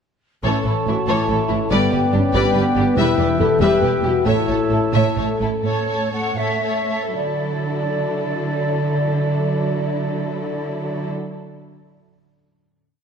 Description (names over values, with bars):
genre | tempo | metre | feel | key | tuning
cinematic, heroic adventure film score | 74-96 BPM (dotted quarters) | 6/8 | straight | D major | A4 = 440 Hz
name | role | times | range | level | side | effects
warm symphonic violin section | melody | 0.4-11.1 s | E4 to E5 | -28 LUFS | left 3 dB | none
mellow clarinet | second line | 0.4-5.4 s | A4 to C#5 | -30 LUFS | left 3 dB | none
warm symphonic violin section | second line | 0.4-11.1 s | C#4 to C#5 | -30 LUFS | left 2 dB | none
dark symphonic viola section | accompaniment | 0.4-11.1 s | E3 to A3 | -26 LUFS | right 1 dB | none
concert harp | arpeggios | 0.4-9.1 s | E2 to C#5 | -27 LUFS | left 6 dB | none
rich studio double bass section | bass | 0.4-5.5 s | E1 to A1 | -24 LUFS | right 4 dB | none
warm symphonic cello section | bass | 0.4-11.1 s | E2 to D3 | -25 LUFS | right 4 dB | none
dark cor anglais | second line | 0.5-5.4 s | C#5 to E5 | -29 LUFS | right 4 dB | none
mellow flute section | second line | 0.5-11.1 s | C#5 to A5 | -26 LUFS | equal | none
dark French horn section | sustained chords | 0.5-5.4 s | B3 to A4 | -20 LUFS | left 3 dB | none
room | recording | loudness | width
moderate scoring stage reverb, RT60 1.9 s | none | -17 LUFS | side -6 dB against mid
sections
0.4-5.6 theme; 5.6-7.1 outro; 7.1-10.3 final chord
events
slowing down 3.6-7.1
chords
0.4 A; 1.7 G; 3.0 Em; 4.3 A; 7.1 Dadd9